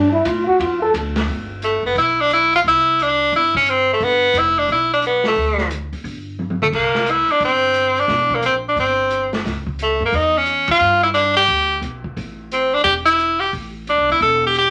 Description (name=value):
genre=jazz, small-group swing and bop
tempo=176 BPM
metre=4/4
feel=swing 65% on 8ths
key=G mixolydian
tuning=A4 = 440 Hz
part: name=mellow trombone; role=second line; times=0.0-0.9 s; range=D4 to A4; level=-18 LUFS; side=equal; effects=none
part: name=upright bass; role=bass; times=0.0-14.7 s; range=E1 to A2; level=-30 LUFS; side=equal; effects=none
part: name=vintage drum kit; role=drums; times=0.3-14.6 s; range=crash cymbal, hi-hat, kick drum, ride cymbal, snare drum, toms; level=-31 LUFS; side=equal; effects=none
part: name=edgy tenor saxophone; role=melody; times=1.6-14.7 s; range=A3 to A4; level=-17 LUFS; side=equal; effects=none
room=wet studio reverb, RT60 0.6 s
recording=none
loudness=-17 LUFS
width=mono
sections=0.0-1.3 A section; 1.3-14.7 B section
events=trombone solo 0.0-1.3; drum fill 6.4-6.7; band accent 10.6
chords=0.0 Gsus2; 1.3 G; 2.6 Cadd9; 4.0 G7; 5.4 D5; 6.0 N.C.; 6.7 Csus2; 9.4 C#m; 10.8 G; 12.2 A5